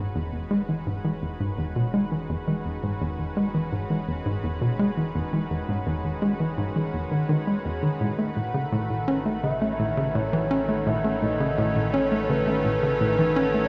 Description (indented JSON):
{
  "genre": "ambient, sequencer-driven space music",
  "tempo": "84 BPM",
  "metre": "4/4",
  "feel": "straight",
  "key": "E major",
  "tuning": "A4 = 436 Hz",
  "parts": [
    { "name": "lush unison pad", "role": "sustained chords", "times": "0.0-13.7 s", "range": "D#3 to B4", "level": "-33 LUFS", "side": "equal", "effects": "chorus" },
    { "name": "tight sequencer bass", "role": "riff", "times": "0.0-13.7 s", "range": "E2 to C#4", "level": "-28 LUFS", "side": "equal", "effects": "tape echo" },
    { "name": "warm sub bass", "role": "bass", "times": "0.0-13.7 s", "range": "E1 to A1", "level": "-39 LUFS", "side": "equal", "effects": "none" },
    { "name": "expressive synth lead", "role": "melody", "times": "8.0-13.7 s", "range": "B4 to F#5", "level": "-30 LUFS", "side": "equal", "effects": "chorus, tape echo" }
  ],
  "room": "moderate plate reverb, RT60 2.4 s",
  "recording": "dreamy mix soaked in reverb, studio reverb",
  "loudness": "-26 LUFS",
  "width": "mono",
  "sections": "0.0-13.7 A section",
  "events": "fade-in on analog synth pad 0.0-13.7",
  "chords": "0.0 Emaj7; 8.0 A"
}